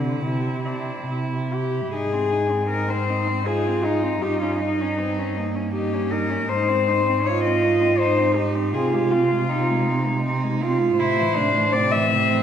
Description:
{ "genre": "classical, lyrical piece for cello ensemble", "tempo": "79 BPM", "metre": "3/4", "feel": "rubato", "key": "Ab major", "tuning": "A4 = 436 Hz", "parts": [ { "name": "warm cello", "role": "melody", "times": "0.0-12.4 s", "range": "C4 to E5", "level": "-23 LUFS", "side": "left 5 dB", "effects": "none" }, { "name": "rich cello", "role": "second line", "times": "0.0-12.4 s", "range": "Ab3 to F4", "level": "-24 LUFS", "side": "right 4 dB", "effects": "none" }, { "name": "warm cello", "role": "accompaniment", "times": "0.0-12.4 s", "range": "C3 to Eb4", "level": "-28 LUFS", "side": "left 2 dB", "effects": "none" }, { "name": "dark cello", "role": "bass", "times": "0.0-12.4 s", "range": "G2 to C3", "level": "-26 LUFS", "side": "right 1 dB", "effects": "none" } ], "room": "wet scoring stage reverb, RT60 2.0 s", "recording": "none", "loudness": "-19 LUFS", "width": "side -8 dB against mid", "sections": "0.0-1.9 A section; 1.9-12.4 B section", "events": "none", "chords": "0.0 C; 1.9 Ab; 4.2 Eb7/G; 6.5 Ab; 8.7 Ab/C; 11.0 Am" }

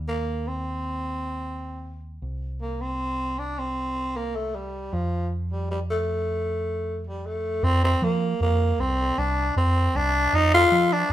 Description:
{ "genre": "progressive instrumental, progressive", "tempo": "155 BPM", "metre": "7/4", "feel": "straight", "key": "unclear", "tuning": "A4 = 438 Hz", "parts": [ { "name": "picked electric bass", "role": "bass", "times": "0.0-11.1 s", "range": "C2 to F3", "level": "-27 LUFS", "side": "right 1 dB", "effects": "none" }, { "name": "growling tenor saxophone", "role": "melody", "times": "0.1-11.1 s", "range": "F3 to F4", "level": "-24 LUFS", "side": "equal", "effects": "none" } ], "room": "moderate studio reverb, RT60 0.8 s", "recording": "band playing live in one room", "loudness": "-22 LUFS", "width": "side -12 dB against mid", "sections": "0.0-7.6 A section; 7.6-11.1 B section", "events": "none", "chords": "0.0 Eb5; 2.2 C5; 4.9 F; 7.6 Fsus4" }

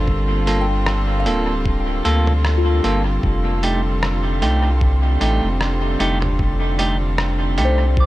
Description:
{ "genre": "ambient dub", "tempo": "76 BPM", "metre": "4/4", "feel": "swing 56% on 16ths", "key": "unclear", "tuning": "A4 = 440 Hz", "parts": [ { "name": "rich chamber string section", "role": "sustained chords", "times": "0.0-8.1 s", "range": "D3 to A4", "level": "-24 LUFS", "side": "right 1 dB", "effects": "none" }, { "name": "soft synth bell", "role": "arpeggios", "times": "0.0-8.1 s", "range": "F4 to D6", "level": "-28 LUFS", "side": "left 5 dB", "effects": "chorus, phaser, dub echo" }, { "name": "soft dub sub bass", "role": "bass", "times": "0.0-8.1 s", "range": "D1 to D2", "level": "-19 LUFS", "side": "equal", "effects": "none" }, { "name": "electronic kick drum", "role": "drums", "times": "0.1-8.1 s", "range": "none", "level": "-21 LUFS", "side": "equal", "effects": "small room reverb" }, { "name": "semi-hollow electric guitar", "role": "stabs", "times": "0.5-7.8 s", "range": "A3 to A4", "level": "-23 LUFS", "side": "right 2 dB", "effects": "dub echo" }, { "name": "lo-fi sampler-style drum kit", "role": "drums", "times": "0.5-7.8 s", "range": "hi-hat, rim click, toms", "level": "-27 LUFS", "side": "equal", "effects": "small room reverb, dub echo" } ], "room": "light reverb", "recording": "none", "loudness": "-16 LUFS", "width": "side -16 dB against mid", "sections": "0.0-8.1 A section", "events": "none", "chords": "0.0 Gm9; 3.2 F9" }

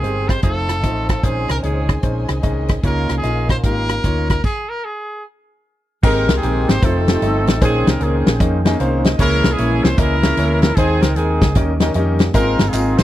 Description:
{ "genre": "uptempo gospel", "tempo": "151 BPM", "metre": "4/4", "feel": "swing 65% on 8ths", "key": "Ab major", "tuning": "A4 = 444 Hz", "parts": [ { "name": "brilliant trumpet", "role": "melody", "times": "0.0-5.2 s", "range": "Ab4 to C5", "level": "-24 LUFS", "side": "right 1 dB", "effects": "none" }, { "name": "clear concert grand piano", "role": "accompaniment", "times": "0.0-13.0 s", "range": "Ab2 to Bb5", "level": "-22 LUFS", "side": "left 1 dB", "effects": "none" }, { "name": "percussive tonewheel organ", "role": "sustained chords", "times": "0.0-13.0 s", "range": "Eb3 to C5", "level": "-28 LUFS", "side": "right 2 dB", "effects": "none" }, { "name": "warm studio string section", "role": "sustained chords", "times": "0.0-4.4 s", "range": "Ab3 to Ab5", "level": "-34 LUFS", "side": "left 2 dB", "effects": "none" }, { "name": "hollow-body short-scale fingered electric bass", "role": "bass", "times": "0.0-13.0 s", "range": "F1 to F2", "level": "-20 LUFS", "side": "equal", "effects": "none" }, { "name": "natural country drum kit", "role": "drums", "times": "0.0-13.0 s", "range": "crash cymbal, hi-hat, kick drum, rim click, snare drum", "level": "-17 LUFS", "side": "equal", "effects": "none" }, { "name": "clear horn section", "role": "melody", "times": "6.0-13.0 s", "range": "C4 to C5", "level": "-20 LUFS", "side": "right 1 dB", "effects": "slapback echo" }, { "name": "tambourine and handclaps", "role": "percussion", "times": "12.4-13.0 s", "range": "none", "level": "-31 LUFS", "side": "right 3 dB", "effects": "none" } ], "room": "small room ambience", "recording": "dry, close 1970s-style studio recording", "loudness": "-14 LUFS", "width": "side -14 dB against mid", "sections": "0.0-6.0 A section; 6.0-13.0 B section", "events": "stop 4.4-6.0; grand piano fill 8.4-9.2", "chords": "0.4 F7; 1.2 Bbm11; 2.8 Db69; 4.4 N.C.; 6.0 Abmaj9; 6.8 F7; 7.6 Bbm11; 9.2 Dbm6; 10.8 Ab; 11.6 Eb7; 12.3 Ab69" }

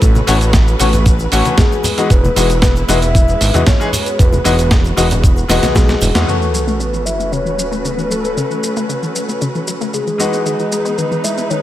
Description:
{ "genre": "nu-disco, nu disco", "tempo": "115 BPM", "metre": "4/4", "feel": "straight", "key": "unclear", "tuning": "A4 = 441 Hz", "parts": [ { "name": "soft octave-layered synth lead", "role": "melody", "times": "0.0-11.6 s", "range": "G#4 to E5", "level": "-21 LUFS", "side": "left 1 dB", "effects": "chorus, cassette tape, tape echo" }, { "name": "dark chamber string section", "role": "sustained chords", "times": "0.0-11.6 s", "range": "E3 to B4", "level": "-23 LUFS", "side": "right 1 dB", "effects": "sidechain pumping, low-pass filter" }, { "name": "fat analog bass", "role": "bass", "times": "0.0-6.2 s", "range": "E1 to E2", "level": "-15 LUFS", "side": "equal", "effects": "none" }, { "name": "dusty soul sampler-style drum kit", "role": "drums", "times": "0.0-11.6 s", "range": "hi-hat, shaker, snare drum", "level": "-20 LUFS", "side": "right 1 dB", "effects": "overdrive, studio reverb" }, { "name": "electronic kick drum", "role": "drums", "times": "0.0-5.9 s", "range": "none", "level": "-12 LUFS", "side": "equal", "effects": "overdrive, studio reverb" }, { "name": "cabasa and congas", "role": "percussion", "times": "0.0-6.3 s", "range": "none", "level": "-22 LUFS", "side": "left 1 dB", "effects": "none" }, { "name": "bright grand piano", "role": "accompaniment", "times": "0.3-11.6 s", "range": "E3 to G#4", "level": "-19 LUFS", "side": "left 3 dB", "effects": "sidechain pumping, low-pass filter" }, { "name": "wide unison pluck", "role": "arpeggios", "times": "6.3-11.5 s", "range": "C#3 to B3", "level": "-22 LUFS", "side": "left 3 dB", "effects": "vintage 12-bit sampler grit, sidechain pumping, tape echo" }, { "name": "sub drop", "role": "sound effects", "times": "6.3-8.4 s", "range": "none", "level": "-23 LUFS", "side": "equal", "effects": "none" } ], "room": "light reverb, digital ambience", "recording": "none", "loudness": "-12 LUFS", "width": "side -13 dB against mid", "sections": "0.0-6.3 A section; 6.3-11.6 B section", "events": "drum fill 5.5-6.3; band accent 6.2; impact 6.3-8.4; filter sweep on string section 6.3-11.6; filter sweep on synth arpeggio sound 6.3-11.6", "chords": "0.0 A69; 1.8 Emaj7; 6.3 A69; 10.2 Emaj7" }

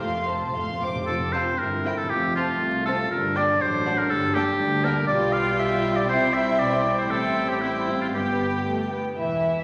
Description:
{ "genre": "quick classical-period movement for symphony orchestra", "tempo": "118 BPM", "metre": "2/4", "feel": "straight", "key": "F major", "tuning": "A4 = 439 Hz", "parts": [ { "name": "dark chamber violin section", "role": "melody", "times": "0.0-9.6 s", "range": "E5 to D6", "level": "-36 LUFS", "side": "equal", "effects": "none" }, { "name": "dark clarinet", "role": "second line", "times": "0.0-0.8, 9.2-9.6 s", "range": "E4 to F4", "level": "-37 LUFS", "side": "equal", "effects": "none" }, { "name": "warm chamber violin section", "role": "second line", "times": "0.0-9.6 s", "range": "D4 to F5", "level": "-33 LUFS", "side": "equal", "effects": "none" }, { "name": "dark symphonic viola section", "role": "accompaniment", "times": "0.0-9.6 s", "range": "E3 to C4", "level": "-34 LUFS", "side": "equal", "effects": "none" }, { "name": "clear chamber double bass section", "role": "bass", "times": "0.0-9.6 s", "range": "E1 to D2", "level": "-36 LUFS", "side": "equal", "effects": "none" }, { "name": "dark chamber cello section", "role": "bass", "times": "0.0-9.6 s", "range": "C2 to C3", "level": "-36 LUFS", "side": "equal", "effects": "none" }, { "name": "timpani", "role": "percussion", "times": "0.0-1.0 s", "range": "F2", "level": "-38 LUFS", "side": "equal", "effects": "none" }, { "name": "clear oboe", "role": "second line", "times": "1.1-8.7 s", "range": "E4 to F5", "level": "-26 LUFS", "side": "equal", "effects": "none" }, { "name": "mellow French horn section", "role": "sustained chords", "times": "1.1-9.6 s", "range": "E3 to F4", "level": "-32 LUFS", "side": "equal", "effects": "none" }, { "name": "mellow hollow small flute group", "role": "second line", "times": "9.2-9.6 s", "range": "E5", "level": "-30 LUFS", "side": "equal", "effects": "none" } ], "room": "wet scoring stage reverb, RT60 1.6 s", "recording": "vinyl crackle", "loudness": "-24 LUFS", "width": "mono", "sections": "0.0-1.1 A section; 1.1-9.2 B section", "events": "timpani fill 0.0-1.1", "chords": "0.0 F; 1.6 C7/G; 2.1 F; 3.1 Gm; 3.6 D7/A; 4.1 Gm; 5.1 G7/B; 6.1 C; 7.1 Am7; 8.1 G" }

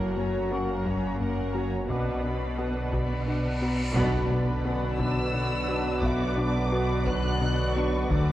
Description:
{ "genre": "cinematic, hybrid orchestral and electronic film score", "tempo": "58 BPM (dotted quarters)", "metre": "6/8", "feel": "straight", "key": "B minor", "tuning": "A4 = 444 Hz", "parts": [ { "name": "warm symphonic violin section", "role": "second line", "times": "0.0-8.3 s", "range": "A#4 to B5", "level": "-37 LUFS", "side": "left 1 dB", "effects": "none" }, { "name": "rich symphonic viola section", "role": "accompaniment", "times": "0.0-8.3 s", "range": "A3 to B4", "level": "-36 LUFS", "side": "right 2 dB", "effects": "none" }, { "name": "analog drone", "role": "sustained chords", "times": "0.0-8.3 s", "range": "D3 to C#5", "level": "-34 LUFS", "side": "equal", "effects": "chorus" }, { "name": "dark French horn section", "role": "sustained chords", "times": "0.0-8.3 s", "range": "D3 to A4", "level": "-36 LUFS", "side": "left 3 dB", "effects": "none" }, { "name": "soft round pluck", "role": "arpeggios", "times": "0.0-8.3 s", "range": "D3 to F#4", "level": "-37 LUFS", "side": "left 2 dB", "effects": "none" }, { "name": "fat analog bass", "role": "riff", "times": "0.0-8.3 s", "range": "D2 to B3", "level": "-32 LUFS", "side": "left 1 dB", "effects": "none" }, { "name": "clear symphonic cello section", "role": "bass", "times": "0.0-8.3 s", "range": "F#2 to D3", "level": "-33 LUFS", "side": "right 1 dB", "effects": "none" }, { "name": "sub bass with octave", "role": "bass", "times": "0.0-8.3 s", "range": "D1 to B1", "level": "-33 LUFS", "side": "equal", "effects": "none" }, { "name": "felt-muted upright piano", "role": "texture", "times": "0.0-8.3 s", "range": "C#4 to D6", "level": "-43 LUFS", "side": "left 1 dB", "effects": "none" }, { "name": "taiko ensemble", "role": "drums", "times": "0.9-8.3 s", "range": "none", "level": "-34 LUFS", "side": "equal", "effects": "none" }, { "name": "cymbal swell and impact", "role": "sound effects", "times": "3.1-6.0 s", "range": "none", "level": "-37 LUFS", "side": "equal", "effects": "none" }, { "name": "warm studio violin section", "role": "melody", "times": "3.6-8.3 s", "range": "A#5 to F#6", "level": "-35 LUFS", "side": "left 1 dB", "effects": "none" }, { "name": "mellow trombone section", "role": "sustained chords", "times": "4.0-8.3 s", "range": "F#3 to B3", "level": "-36 LUFS", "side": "right 4 dB", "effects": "none" }, { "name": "rich symphonic double bass section", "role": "bass", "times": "4.0-8.3 s", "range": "B1 to D2", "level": "-33 LUFS", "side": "right 2 dB", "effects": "none" } ], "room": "wet scoring stage reverb, RT60 1.8 s", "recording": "worn, warbling old tape, cassette tape, warbly pitch drift", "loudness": "-24 LUFS", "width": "side -14 dB against mid", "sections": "0.0-4.0 A section; 4.0-8.3 A section", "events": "cymbal swell 3.1-4.0; band accent 4.0-4.7; impact 4.0-6.0", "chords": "0.0 F#; 1.9 Bm" }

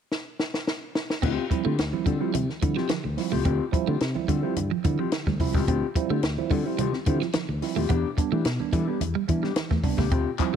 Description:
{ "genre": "funk", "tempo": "108 BPM", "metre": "4/4", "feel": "straight", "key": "D dorian", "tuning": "A4 = 440 Hz", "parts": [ { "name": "compact cocktail drum kit", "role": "drums", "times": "0.1-10.5 s", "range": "crash cymbal, hi-hat, kick drum, snare drum", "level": "-27 LUFS", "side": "left 1 dB", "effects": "none" }, { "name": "mellow electric guitar", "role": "accompaniment", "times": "1.2-10.6 s", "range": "B3 to A4", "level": "-31 LUFS", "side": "left 10 dB", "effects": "none" }, { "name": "clean electric guitar", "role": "riff", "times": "1.2-10.6 s", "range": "F3 to C4", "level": "-32 LUFS", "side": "right 11 dB", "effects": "phaser" }, { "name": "tine electric piano", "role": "stabs", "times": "1.2-10.5 s", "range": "D3 to E4", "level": "-30 LUFS", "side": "right 11 dB", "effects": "phaser" }, { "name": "fingered electric bass", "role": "bass", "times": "1.2-10.4 s", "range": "C2 to E3", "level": "-27 LUFS", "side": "left 1 dB", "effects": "none" }, { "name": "congas", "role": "percussion", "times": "1.2-10.5 s", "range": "none", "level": "-38 LUFS", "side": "right 6 dB", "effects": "none" }, { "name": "group handclap", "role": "percussion", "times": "10.4-10.5 s", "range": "none", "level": "-30 LUFS", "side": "left 14 dB", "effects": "none" } ], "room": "light reverb, small room reverb", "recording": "1960s-style stereo with parts hard left and right", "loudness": "-23 LUFS", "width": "side -8 dB against mid", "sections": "0.0-1.2 A section; 1.2-10.6 B section", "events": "drum fill 0.1-1.2", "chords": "0.0 N.C.; 1.2 Dm11; 7.9 Em7" }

